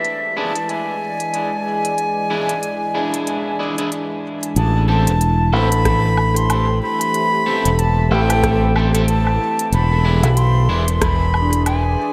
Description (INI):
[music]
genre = ambient dub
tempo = 93 BPM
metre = 4/4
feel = swing 58% on 16ths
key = A minor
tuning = A4 = 440 Hz
[part]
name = breathy silver concert flute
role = melody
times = 0.0-12.1 s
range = E5 to C6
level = -24 LUFS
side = equal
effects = dub echo
[part]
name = deep dark ambient pad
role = sustained chords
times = 0.0-12.1 s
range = E3 to D5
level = -28 LUFS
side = equal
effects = chorus, built-in reverb
[part]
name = organic electronic drum kit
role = drums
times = 0.0-11.8 s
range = hi-hat, rim click, woodblock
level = -28 LUFS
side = equal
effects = low-pass filter on hats, low-pass filter on snare, low-pass filter on perc, dub echo
[part]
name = electric guitar at the edge of break-up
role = stabs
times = 0.4-10.8 s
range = C4 to A4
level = -29 LUFS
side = equal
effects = dub echo
[part]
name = vibraphone with medium mallets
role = arpeggios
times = 3.0-12.1 s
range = D4 to G5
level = -31 LUFS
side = equal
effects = dub echo
[part]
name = fingered electric bass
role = bass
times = 4.6-12.0 s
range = E1 to B1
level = -18 LUFS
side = equal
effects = none
[part]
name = electronic kick drum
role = drums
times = 5.9-11.2 s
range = none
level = -26 LUFS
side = equal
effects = none
[sound]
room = moderate lush hall reverb, RT60 1.9 s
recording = none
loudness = -18 LUFS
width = mono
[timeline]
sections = 0.0-4.6 A section; 4.6-12.1 B section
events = none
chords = 0.0 E7; 4.6 Am7; 9.7 E7